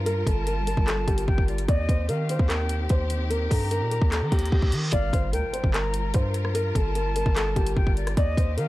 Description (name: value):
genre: hip hop, trap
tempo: 148 BPM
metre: 4/4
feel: half-time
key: G minor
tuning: A4 = 436 Hz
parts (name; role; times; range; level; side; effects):
- felt-muted upright piano; melody; 0.0-8.7 s; G4 to D5; -30 LUFS; left 1 dB; tape echo
- dark symphonic string section; sustained chords; 0.0-8.7 s; Eb3 to Bb4; -35 LUFS; left 2 dB; none
- hard-hitting 808-style bass; bass; 0.0-8.7 s; G1 to Eb3; -26 LUFS; equal; none
- trap drum kit; drums; 0.1-8.7 s; handclaps, hi-hat, kick drum, rim click; -24 LUFS; equal; none
- silver concert flute; second line; 0.3-8.7 s; D5 to Bb5; -35 LUFS; left 2 dB; tape echo
- reverse cymbal and impact; sound effects; 4.3-6.5 s; none; -35 LUFS; right 2 dB; none
room: small room ambience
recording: dark, warm production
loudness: -22 LUFS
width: side -17 dB against mid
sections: 0.0-4.9 A section; 4.9-8.7 B section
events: reverse cymbal 4.3-4.9; impact 4.9-6.5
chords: 0.0 Gm7; 1.7 Eb6; 4.9 Gm7; 8.2 Eb6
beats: | 0.06 0.47 0.87 1.28 | 1.69 2.09 2.50 2.90 | 3.31 3.71 4.12 4.52 | 4.93 5.33 5.74 6.14 | 6.55 6.96 7.36 7.77 | 8.17 8.58